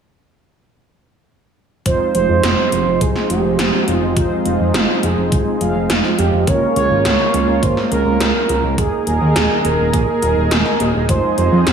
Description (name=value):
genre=synthwave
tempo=104 BPM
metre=4/4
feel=straight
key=F minor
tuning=A4 = 440 Hz
part: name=expressive synth lead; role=melody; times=1.9-11.7 s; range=F4 to Db5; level=-20 LUFS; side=right 3 dB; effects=chorus, tape echo
part: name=lush unison pad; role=sustained chords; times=1.9-11.7 s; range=Db3 to Bb4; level=-21 LUFS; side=right 2 dB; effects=chorus, sidechain pumping
part: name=mellow synth brass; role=stabs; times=1.9-11.7 s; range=Ab3 to F5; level=-23 LUFS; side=equal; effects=chorus
part: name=fat analog bass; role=bass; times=1.9-11.7 s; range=Eb1 to F2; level=-18 LUFS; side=equal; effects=none
part: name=80s electronic pad drums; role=drums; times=1.9-11.7 s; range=hi-hat, snare drum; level=-20 LUFS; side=right 1 dB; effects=overdrive, gated reverb
part: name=electronic kick drum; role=drums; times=1.9-11.2 s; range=none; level=-20 LUFS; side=equal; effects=none
room=light reverb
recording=small room ambience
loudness=-14 LUFS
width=side -7 dB against mid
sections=1.9-11.7 A section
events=none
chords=1.9 Fm7; 6.5 Db6; 8.8 Ebsus4; 11.1 Fm7